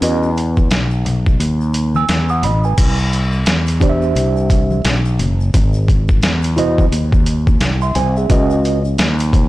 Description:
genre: hip hop, jazz-hop.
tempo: 87 BPM.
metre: 4/4.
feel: swing 60% on 16ths.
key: unclear.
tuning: A4 = 436 Hz.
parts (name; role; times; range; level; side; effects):
mellow tine electric piano; accompaniment; 0.0-8.8 s; C#4 to E6; -19 LUFS; right 3 dB; medium stereo tremolo.
fretless electric bass; bass; 0.0-9.5 s; F#1 to E2; -16 LUFS; equal; tube saturation.
boom bap sampler-style drum kit; drums; 0.0-9.5 s; crash cymbal, hi-hat, kick drum, snare drum; -16 LUFS; equal; overdrive.
tube shaker and congas; percussion; 0.0-9.5 s; none; -29 LUFS; left 4 dB; none.
room: little or no reverb.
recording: blown-out, overdriven recording, overdrive.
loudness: -13 LUFS.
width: side -17 dB against mid.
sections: 0.0-2.8 A section; 2.8-9.5 B section.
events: kick muted 1.4-2.8.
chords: 0.0 Esus2; 2.8 Cmaj9; 5.5 G#(b13); 8.3 C#m11.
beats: | 0.03 0.71 1.40 2.09 | 2.78 3.47 4.16 4.85 | 5.54 6.23 6.92 7.61 | 8.30 8.99.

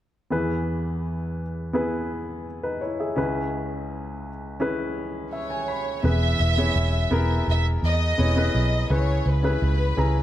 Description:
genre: pop.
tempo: 84 BPM.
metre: 4/4.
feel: straight.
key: unclear.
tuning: A4 = 440 Hz.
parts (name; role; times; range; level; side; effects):
warm baby grand piano; accompaniment; 0.3-10.2 s; C#2 to B5; -26 LUFS; left 1 dB; none.
dark studio violin section; melody; 5.3-10.2 s; B4 to E5; -27 LUFS; equal; none.
vintage muted picked electric bass; bass; 6.0-10.2 s; E1 to E2; -21 LUFS; equal; none.
room: light reverb, small room ambience.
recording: none.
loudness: -22 LUFS.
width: side -13 dB against mid.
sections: 0.3-6.0 A section; 6.0-10.2 B section.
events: grand piano fill 5.0-6.0.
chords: 0.3 E; 3.2 C#m7; 6.0 E; 8.9 C#m7.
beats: | 0.31 1.03 1.74 2.46 | 3.17 3.89 4.61 5.32 | 6.04 6.75 7.47 8.19 | 8.90 9.62.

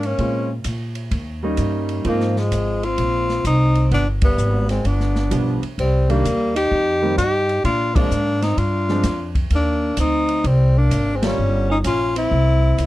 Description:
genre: jazz, small-group swing and bop.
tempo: 129 BPM.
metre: 4/4.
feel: swing 67% on 8ths.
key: Eb major.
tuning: A4 = 436 Hz.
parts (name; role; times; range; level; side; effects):
breathy tenor saxophone; melody; 0.0-12.9 s; Ab3 to G4; -21 LUFS; left 2 dB; none.
growling alto saxophone; second line; 0.0-12.9 s; F3 to Eb4; -27 LUFS; right 2 dB; none.
upright bass; bass; 0.0-12.9 s; G1 to Bb2; -20 LUFS; equal; none.
open jazz drum kit; drums; 0.0-12.9 s; hi-hat, kick drum, ride cymbal, snare drum; -25 LUFS; equal; none.
warm upright piano; accompaniment; 0.2-2.3, 5.3-11.4 s; Eb3 to F4; -24 LUFS; right 1 dB; none.
room: little or no reverb.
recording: dark, warm production.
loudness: -17 LUFS.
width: side -16 dB against mid.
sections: 0.0-12.9 A section.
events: band accent 4.1, 7.9, 11.1.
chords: 0.2 Bbm7; 1.1 Eb7; 2.1 Ab6; 3.9 G7; 5.8 Cm7; 7.6 Bb7; 9.5 Eb6; 11.4 Gm7b5; 12.3 C(b9).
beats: | 0.19 0.66 1.12 1.59 | 2.05 2.52 2.98 3.45 | 3.92 4.38 4.85 5.31 | 5.78 6.25 6.71 7.18 | 7.64 8.11 8.58 9.05 | 9.51 9.98 10.45 10.91 | 11.38 11.85 12.32 12.79.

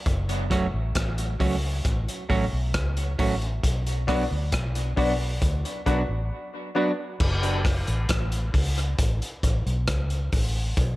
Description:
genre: dub reggae.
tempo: 67 BPM.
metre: 4/4.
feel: straight.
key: F# minor.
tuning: A4 = 440 Hz.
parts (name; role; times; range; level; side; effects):
vintage muted fingered electric bass; bass; 0.1-11.0 s; F#1 to D2; -26 LUFS; equal; none.
crunchy breakbeat drum kit; drums; 0.1-11.0 s; crash cymbal, hi-hat, kick drum, rim click; -26 LUFS; equal; none.
semi-hollow electric guitar; accompaniment; 0.5-6.9 s; F#3 to F#4; -30 LUFS; right 3 dB; dub echo.
clear concert grand piano; stabs; 4.1-6.9 s; D4 to D5; -31 LUFS; left 5 dB; dub echo.
room: light reverb.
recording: none.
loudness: -23 LUFS.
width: side -18 dB against mid.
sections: 0.0-7.2 A section; 7.2-11.0 B section.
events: break 0.0-3.6, 6.3-7.2.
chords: 0.1 F#m; 3.6 Bm; 7.2 F#m.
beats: | 0.06 0.96 1.85 2.74 | 3.64 4.53 5.42 6.31 | 7.21 8.10 8.99 9.88 | 10.77.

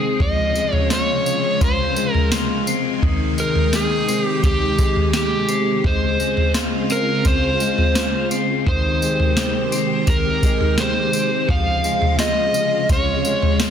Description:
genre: dream pop.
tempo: 85 BPM.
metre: 4/4.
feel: straight.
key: unclear.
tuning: A4 = 440 Hz.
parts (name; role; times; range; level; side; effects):
overdriven slide guitar; melody; 0.0-13.6 s; G4 to F5; -21 LUFS; right 1 dB; digital delay.
string machine, violins; sustained chords; 0.0-13.7 s; C3 to G5; -24 LUFS; equal; ensemble chorus.
electric guitar at the edge of break-up; arpeggios; 0.0-13.7 s; Eb3 to G4; -24 LUFS; left 4 dB; wide subtle chorus, digital delay.
soft vintage rhythm box; drums; 0.2-13.7 s; kick drum, snare drum, tambourine, toms; -20 LUFS; equal; overdrive.
room: moderate concert hall reverb, RT60 2.3 s.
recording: dense, heavily limited modern master.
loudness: -16 LUFS.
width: side -8 dB against mid.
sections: 0.0-13.7 A section.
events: none.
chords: 0.2 Dbmaj7; 3.0 Abmaj7; 5.8 Dbmaj7; 8.7 Abmaj7; 11.5 Dbmaj7.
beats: | 0.20 0.90 1.61 2.31 | 3.02 3.72 4.43 5.14 | 5.84 6.55 7.25 7.96 | 8.66 9.37 10.08 10.78 | 11.49 12.20 12.90 13.61.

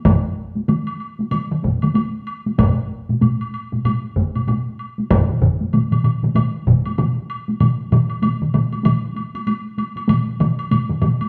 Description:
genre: japanese traditional, taiko drum ensemble.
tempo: 96 BPM.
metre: 4/4.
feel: swing 60% on 16ths.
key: none.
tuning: none.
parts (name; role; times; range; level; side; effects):
solo taiko drums; percussion; 0.1-6.8 s; none; -22 LUFS; equal; none.
taiko ensemble; percussion; 0.1-11.3 s; none; -24 LUFS; equal; none.
taiko ensemble; percussion; 0.1-11.2 s; none; -23 LUFS; equal; none.
woodblock; percussion; 0.1-11.3 s; none; -33 LUFS; equal; none.
taiko ensemble; percussion; 2.6-11.2 s; none; -22 LUFS; equal; none.
room: wet large studio reverb, RT60 1.1 s.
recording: band playing live in one room.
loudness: -19 LUFS.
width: mono.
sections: 0.0-7.6 A section; 7.6-11.3 B section.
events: none.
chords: none.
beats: | 0.06 0.69 1.32 1.95 | 2.58 3.21 3.84 4.47 | 5.10 5.73 6.35 6.98 | 7.60 8.23 8.85 9.47 | 10.09 10.71.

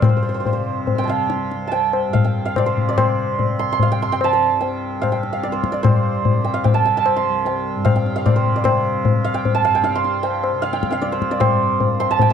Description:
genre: indian classical, Hindustani.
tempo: 142-155 BPM.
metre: 7/4.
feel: straight.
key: C raga durga.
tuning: A4 = 440 Hz.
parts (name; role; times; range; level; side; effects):
santur; melody; 0.0-12.3 s; C5 to F6; -20 LUFS; right 6 dB; none.
tanpura; drone; 0.0-12.3 s; C2 to C3; -26 LUFS; equal; none.
tabla; percussion; 0.0-12.3 s; none; -19 LUFS; left 4 dB; none.
room: little or no reverb.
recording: dry, close 1970s-style studio recording.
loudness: -16 LUFS.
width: side -8 dB against mid.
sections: 0.0-5.8 A section; 5.8-12.3 B section.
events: speeding up 0.0-12.3.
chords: none.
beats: | 0.03 0.46 0.88 1.30 1.72 2.14 2.55 | 2.97 3.38 3.80 4.21 4.62 5.03 5.44 | 5.84 6.25 6.65 7.06 7.46 7.86 8.26 | 8.66 9.05 9.45 9.85 10.24 10.63 11.02 | 11.41 11.80 12.19.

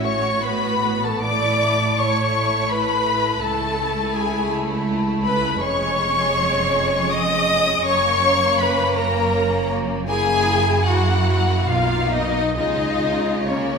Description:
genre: classical, slow romantic movement for string orchestra.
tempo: 66-85 BPM.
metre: 3/4.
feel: rubato.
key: F# major from 5.6 s.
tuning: A4 = 440 Hz.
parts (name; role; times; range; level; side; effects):
rich studio violin section; melody; 0.0-13.8 s; C#5 to D#6; -21 LUFS; left 5 dB; none.
clear studio violin section; second line; 0.0-13.8 s; G#3 to F#4; -26 LUFS; left 1 dB; none.
rich studio viola section; accompaniment; 0.0-13.8 s; C#4 to D#5; -23 LUFS; right 1 dB; none.
warm studio cello section; bass; 0.0-13.8 s; C#2 to C#3; -27 LUFS; right 3 dB; none.
warm studio double bass section; bass; 0.0-13.8 s; E#1 to C#2; -26 LUFS; right 3 dB; none.
room: wet concert hall reverb, RT60 2.3 s.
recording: recorded in a church or concert hall.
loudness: -17 LUFS.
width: side -5 dB against mid.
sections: 0.0-13.8 A section.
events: none.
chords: 0.0 F#m/A; 1.2 A; 3.4 A/C#; 5.6 C#/E#; 7.9 F#; 10.1 F#7; 11.7 Bmaj7; 12.6 C#.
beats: 0.43 | 1.25 1.99 2.71 | 3.43 4.14 4.87 | 5.62 6.37 7.11 | 7.86 8.60 9.34 | 10.09 10.87 11.69 | 12.57 13.47.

